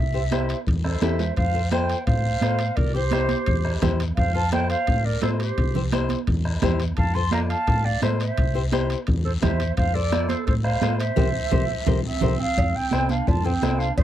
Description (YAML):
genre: latin, cumbia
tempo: 171 BPM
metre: 4/4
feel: straight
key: F major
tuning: A4 = 438 Hz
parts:
  - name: mellow concert flute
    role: melody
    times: 0.0-14.0 s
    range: C5 to C6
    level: -27 LUFS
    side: right 1 dB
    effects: none
  - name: hollow-body short-scale fingered electric bass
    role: bass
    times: 0.0-14.0 s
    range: C2 to A2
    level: -24 LUFS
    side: equal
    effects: none
  - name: nylon-string guitar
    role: accompaniment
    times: 0.1-13.9 s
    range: E4 to D5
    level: -28 LUFS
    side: left 8 dB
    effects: none
  - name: bombo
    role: percussion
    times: 0.3-14.0 s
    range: none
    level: -26 LUFS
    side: left 1 dB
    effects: none
  - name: congas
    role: percussion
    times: 0.3-13.8 s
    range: none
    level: -29 LUFS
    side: right 8 dB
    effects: none
  - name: guiro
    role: percussion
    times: 0.3-14.0 s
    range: none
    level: -39 LUFS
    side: left 8 dB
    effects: none
  - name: timbales and cowbell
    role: percussion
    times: 0.3-14.0 s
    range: none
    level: -34 LUFS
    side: right 6 dB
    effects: none
  - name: growling clarinet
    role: second line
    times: 0.8-14.0 s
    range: A3 to A5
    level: -32 LUFS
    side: right 5 dB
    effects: none
room: little or no reverb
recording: dry, close 1970s-style studio recording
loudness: -20 LUFS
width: side -12 dB against mid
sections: 0.0-1.4 A section; 1.4-12.6 A section; 12.6-14.0 B section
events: drum fill 0.8-1.4, 11.5-12.6; band accent 11.2-12.6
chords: 0.0 C; 1.4 F; 2.8 C; 4.2 F; 5.6 C; 7.0 F; 8.4 C; 9.8 F; 11.2 C7; 12.6 F